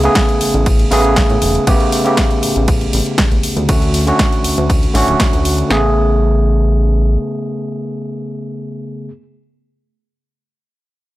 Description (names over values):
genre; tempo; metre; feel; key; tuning
nu-disco, nu disco; 119 BPM; 4/4; straight; A major; A4 = 439 Hz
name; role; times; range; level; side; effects
overdriven tine electric piano; accompaniment; 0.0-9.1 s; C#3 to G#4; -16 LUFS; equal; sidechain pumping, slapback echo
chorused synth bass; bass; 0.0-7.2 s; D1 to A2; -16 LUFS; equal; sidechain pumping
house drum kit; drums; 0.0-5.7 s; hi-hat, ride cymbal, snare drum; -20 LUFS; equal; none
house drum kit; drums; 0.2-5.8 s; kick drum, snare drum; -15 LUFS; equal; none
room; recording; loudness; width
digital ambience; none; -12 LUFS; side -16 dB against mid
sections
0.0-5.7 A section; 5.7-9.7 B section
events
drop 0.0-5.7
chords
0.0 Amaj9; 1.7 A9; 3.7 Dmaj7; 5.7 Amaj9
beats
0.16 0.66 1.17 | 1.67 2.17 2.68 3.18 | 3.69 4.19 4.70 5.20 | 5.70 6.21 6.71 7.22 | 7.72 8.22 8.73